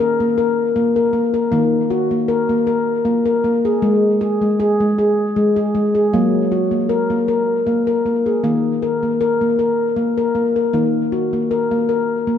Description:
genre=world meditative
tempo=78 BPM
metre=3/4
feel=swing 53% on 16ths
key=Eb minor pentatonic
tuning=A4 = 440 Hz
part: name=handpan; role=solo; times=0.0-12.4 s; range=Eb3 to Bb4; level=-15 LUFS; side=left 2 dB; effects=diffuse ambient delay
room=wet echo chamber reverb, RT60 1.4 s, small room ambience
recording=dark, warm production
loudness=-15 LUFS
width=side -8 dB against mid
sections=0.0-12.4 A section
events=none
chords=0.0 Eb5; 3.8 N.C.; 6.1 Gb; 8.4 Eb5

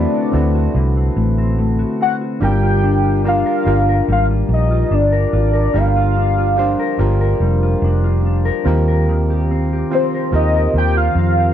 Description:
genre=indie pop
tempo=72 BPM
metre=4/4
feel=straight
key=unclear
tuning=A4 = 441 Hz
part: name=warm velvety synth lead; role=melody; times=0.0-11.5 s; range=C5 to G5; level=-18 LUFS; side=equal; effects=tremolo, lush chorus, slapback echo
part: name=mellow electric guitar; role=accompaniment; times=0.0-11.5 s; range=D3 to Bb4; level=-21 LUFS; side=left 6 dB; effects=lush chorus, warbly pitch drift
part: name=soft electric-piano-like synth keys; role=accompaniment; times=0.0-11.5 s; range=C4 to C5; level=-23 LUFS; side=right 4 dB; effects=chorus
part: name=vintage muted fingered electric bass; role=bass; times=0.0-11.5 s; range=F1 to F2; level=-16 LUFS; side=equal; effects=none
room=little or no reverb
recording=dry, close 1970s-style studio recording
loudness=-14 LUFS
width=side -10 dB against mid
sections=0.0-11.5 A section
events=none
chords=0.0 D7; 2.4 Gm7; 8.7 Eb6

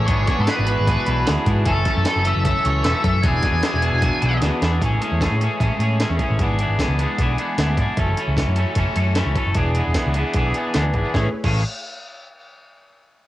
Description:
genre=indie rock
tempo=152 BPM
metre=4/4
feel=straight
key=A major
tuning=A4 = 439 Hz
part: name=octave-fuzz lead guitar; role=melody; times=0.0-4.4 s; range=A4 to G#5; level=-25 LUFS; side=equal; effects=distortion, analog delay
part: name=glockenspiel with hard plastic mallets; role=second line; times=0.0-4.4 s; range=A5 to G#6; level=-32 LUFS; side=equal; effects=cassette tape
part: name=string machine, violas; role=sustained chords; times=0.0-11.3 s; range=E3 to B5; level=-30 LUFS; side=equal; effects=ensemble chorus, cassette tape
part: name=twangy electric guitar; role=riff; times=0.0-11.6 s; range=E3 to A4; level=-23 LUFS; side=equal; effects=double-tracked left and right, cassette tape
part: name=picked electric bass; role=bass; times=0.0-11.6 s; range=E1 to A2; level=-20 LUFS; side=equal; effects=none
part: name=breakbeat sampler-style drum kit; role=drums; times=0.1-11.5 s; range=crash cymbal, hi-hat, kick drum, snare drum, tambourine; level=-24 LUFS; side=equal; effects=cassette tape
room=little or no reverb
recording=home recording on cassette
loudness=-17 LUFS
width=side -15 dB against mid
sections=0.0-4.8 A section; 4.8-11.1 B section; 11.1-12.7 C section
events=drum fill 4.4-4.8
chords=0.1 E7/G#; 1.7 F#m7; 3.2 E7; 4.8 Amaj7; 6.4 E7/G#; 8.0 F#m7; 9.6 E7; 11.1 Amaj7

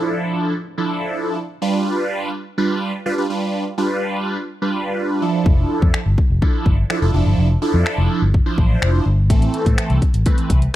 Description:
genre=dance-pop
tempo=125 BPM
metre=4/4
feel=straight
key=D dorian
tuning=A4 = 440 Hz
part: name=big bright polysynth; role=accompaniment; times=0.0-10.6 s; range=E3 to C5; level=-20 LUFS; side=right 2 dB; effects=phaser, sidechain pumping
part: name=downlifter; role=sound effects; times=0.0-1.6 s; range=none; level=-44 LUFS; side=left 2 dB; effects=none
part: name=fingered electric bass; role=bass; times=5.5-10.7 s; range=F1 to A2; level=-17 LUFS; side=left 1 dB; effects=sidechain pumping
part: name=pop drum kit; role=drums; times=5.5-10.7 s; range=finger snaps, hi-hat, kick drum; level=-17 LUFS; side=left 1 dB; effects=none
room=little or no reverb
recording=dry, close 1970s-style studio recording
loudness=-16 LUFS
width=side -14 dB against mid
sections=0.0-10.8 A section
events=none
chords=0.0 Dmadd9; 1.6 G7; 5.2 Dmadd9/F; 9.3 Am

